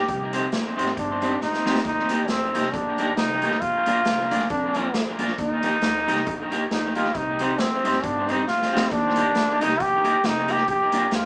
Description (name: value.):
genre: ska.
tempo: 136 BPM.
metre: 4/4.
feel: swing 57% on 8ths.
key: Eb major.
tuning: A4 = 441 Hz.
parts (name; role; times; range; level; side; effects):
brilliant trombone; melody; 0.0-11.3 s; C4 to G4; -22 LUFS; equal; none.
upright bass; bass; 0.0-11.3 s; F1 to F2; -33 LUFS; equal; none.
street-band drum kit; drums; 0.1-11.2 s; hi-hat, kick drum, snare drum; -28 LUFS; equal; tape echo.
electric guitar at the edge of break-up; accompaniment; 0.3-11.0 s; Bb3 to C5; -26 LUFS; equal; tape echo.
room: wet studio ambience, RT60 0.5 s.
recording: band playing live in one room, small speaker sound.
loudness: -20 LUFS.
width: side -40 dB against mid.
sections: 0.0-11.3 A section.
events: trombone solo 0.0-11.3; drum fill 1.4-1.9, 8.5-8.9.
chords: 0.1 Cm; 1.9 Eb; 3.6 Bb; 5.4 Eb; 7.2 Cm; 8.9 Eb; 10.7 Bb.